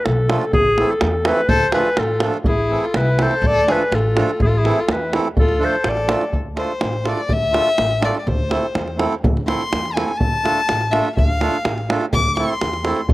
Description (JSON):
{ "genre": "balkan folk, Balkan wedding band", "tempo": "124 BPM", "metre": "2/4", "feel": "straight", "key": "D dorian sharp4", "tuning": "A4 = 439 Hz", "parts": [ { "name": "clear clarinet", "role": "melody", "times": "0.0-6.4 s", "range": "G#4 to D5", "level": "-19 LUFS", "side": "left 1 dB", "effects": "slapback echo" }, { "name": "upright bass", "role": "bass", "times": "0.1-13.1 s", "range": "A1 to E2", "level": "-22 LUFS", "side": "equal", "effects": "none" }, { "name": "davul", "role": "percussion", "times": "0.1-13.1 s", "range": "none", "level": "-21 LUFS", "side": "right 1 dB", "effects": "none" }, { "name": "accordion", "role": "accompaniment", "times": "0.3-13.0 s", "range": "E3 to A4", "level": "-23 LUFS", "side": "right 3 dB", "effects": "none" }, { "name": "rich violin", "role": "second line", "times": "1.5-13.1 s", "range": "E4 to D6", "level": "-22 LUFS", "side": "left 3 dB", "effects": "slapback echo" } ], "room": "little or no reverb", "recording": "recorded outdoors, with no room sound", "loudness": "-16 LUFS", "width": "side -17 dB against mid", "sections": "0.0-6.3 A section; 6.3-13.1 B section", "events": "violin solo 6.3-13.1", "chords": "0.0 Dm; 0.5 Am; 1.5 Dm; 2.5 Am; 3.4 Dm; 4.4 Am; 5.4 Dm; 8.3 Am/D; 10.2 Dm; 12.1 Am/D" }